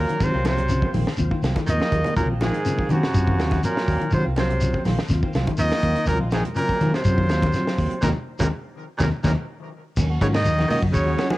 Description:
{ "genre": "afrobeat", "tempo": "123 BPM", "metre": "4/4", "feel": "straight", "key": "Eb dorian", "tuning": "A4 = 440 Hz", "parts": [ { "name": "clear trumpet", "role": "melody", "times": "0.0-11.4 s", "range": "Gb4 to Eb5", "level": "-27 LUFS", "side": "equal", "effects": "cassette tape, plate reverb, tape echo" }, { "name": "raspy baritone saxophone", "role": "second line", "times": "0.0-11.4 s", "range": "Gb2 to Eb3", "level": "-30 LUFS", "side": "right 2 dB", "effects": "cassette tape, plate reverb" }, { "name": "trombone with bucket mute", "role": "second line", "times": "0.0-11.4 s", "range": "C3 to Bb3", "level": "-30 LUFS", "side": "right 2 dB", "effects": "cassette tape" }, { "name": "semi-hollow electric guitar", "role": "stabs", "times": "0.0-11.3 s", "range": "Gb3 to Gb4", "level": "-33 LUFS", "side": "right 4 dB", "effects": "analog chorus, cassette tape, plate reverb" }, { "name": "fingered electric bass", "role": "bass", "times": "0.0-11.1 s", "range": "Bb1 to Eb3", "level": "-23 LUFS", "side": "equal", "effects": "none" }, { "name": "mellow electric guitar", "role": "arpeggios", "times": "0.1-11.3 s", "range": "C3 to Gb3", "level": "-30 LUFS", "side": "left 4 dB", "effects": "cassette tape, tape echo" }, { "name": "tight funk drum kit", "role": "drums", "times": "0.1-11.4 s", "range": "crash cymbal, hi-hat, kick drum, ride cymbal, snare drum", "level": "-27 LUFS", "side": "equal", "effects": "cassette tape" }, { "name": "mellow tonewheel organ", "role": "accompaniment", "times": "0.2-11.4 s", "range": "Gb3 to F4", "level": "-32 LUFS", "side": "left 2 dB", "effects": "slow rotary speaker, cassette tape" }, { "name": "congas", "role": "percussion", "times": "0.2-11.4 s", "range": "none", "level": "-30 LUFS", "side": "right 1 dB", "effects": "none" }, { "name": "shekere", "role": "percussion", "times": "0.2-11.3 s", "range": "none", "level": "-28 LUFS", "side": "left 1 dB", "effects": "none" } ], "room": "light reverb", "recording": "home recording on cassette", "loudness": "-19 LUFS", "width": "side -18 dB against mid", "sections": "0.0-10.0 A section; 10.0-11.4 B section", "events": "drum fill 1.7-2.2, 9.6-10.0; band accent 8.0-10.0; tonewheel organ fill 9.0-10.0", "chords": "0.0 Ebm69; 10.0 Ebm7" }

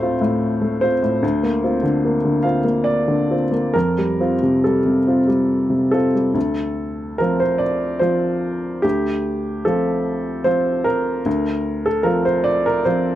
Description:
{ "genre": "neoclassical minimalist piano", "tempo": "66-77 BPM", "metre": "3/4", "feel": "rubato", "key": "D minor", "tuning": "A4 = 440 Hz", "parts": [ { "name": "clear upright piano", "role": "solo", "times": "0.0-13.2 s", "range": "D2 to F5", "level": "-17 LUFS", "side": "equal", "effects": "none" } ], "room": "light reverb", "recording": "dry, close 1970s-style studio recording", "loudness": "-17 LUFS", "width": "side -13 dB against mid", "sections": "0.0-6.4 A section; 6.4-13.2 A section", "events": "none", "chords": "0.0 Dm7; 1.2 Bbadd9/D; 3.7 Fadd9; 6.4 Dm7" }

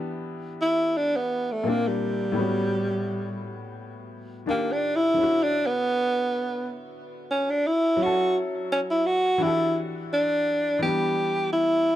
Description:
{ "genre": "R&B", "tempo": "85 BPM", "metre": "4/4", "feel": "swing 54% on 16ths", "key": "E dorian", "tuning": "A4 = 440 Hz", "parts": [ { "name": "clear upright piano", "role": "accompaniment", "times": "0.0-12.0 s", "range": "A2 to A4", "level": "-30 LUFS", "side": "left 3 dB", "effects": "none" }, { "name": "breathy tenor saxophone", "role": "melody", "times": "0.6-12.0 s", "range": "G3 to G4", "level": "-23 LUFS", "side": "right 1 dB", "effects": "none" } ], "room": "moderate small room reverb, RT60 0.5 s", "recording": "dark, warm production", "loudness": "-22 LUFS", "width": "side -12 dB against mid", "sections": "0.0-10.8 A section; 10.8-12.0 B section", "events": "tenor saxophone solo 0.0-10.8", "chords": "0.0 Em7; 1.6 A#add9; 2.4 A13; 4.5 D#maj9; 5.2 Dmaj9; 8.0 F#m7; 9.4 Em11; 10.8 Em7" }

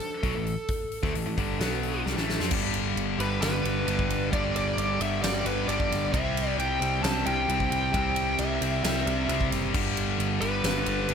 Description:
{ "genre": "hard rock", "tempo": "133 BPM", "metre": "4/4", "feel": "straight", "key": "unclear", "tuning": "A4 = 441 Hz", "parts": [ { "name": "biting lead guitar", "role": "melody", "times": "0.0-11.1 s", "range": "A4 to A5", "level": "-31 LUFS", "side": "left 1 dB", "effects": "overdrive, digital delay" }, { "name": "huge arena drum kit", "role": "drums", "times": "0.0-11.1 s", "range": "crash cymbal, hi-hat, kick drum, ride cymbal, snare drum", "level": "-31 LUFS", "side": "equal", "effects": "none" }, { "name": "sludgy distorted guitar", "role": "riff", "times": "0.2-11.1 s", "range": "G2 to C4", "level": "-32 LUFS", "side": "right 14 dB", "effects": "overdrive" }, { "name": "tight distorted guitar", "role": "riff", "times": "0.2-11.1 s", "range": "G2 to C4", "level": "-31 LUFS", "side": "left 13 dB", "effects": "distortion" }, { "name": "picked electric bass", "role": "bass", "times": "0.2-11.1 s", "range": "F#1 to F2", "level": "-32 LUFS", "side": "equal", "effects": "none" } ], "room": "small room reverb", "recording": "none", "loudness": "-24 LUFS", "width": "side -7 dB against mid", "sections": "0.0-2.5 A section; 2.5-11.1 B section", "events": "drum fill 2.1-2.5", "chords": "0.0 A5; 1.6 B5; 2.1 Am; 2.5 G; 6.1 C; 9.7 G" }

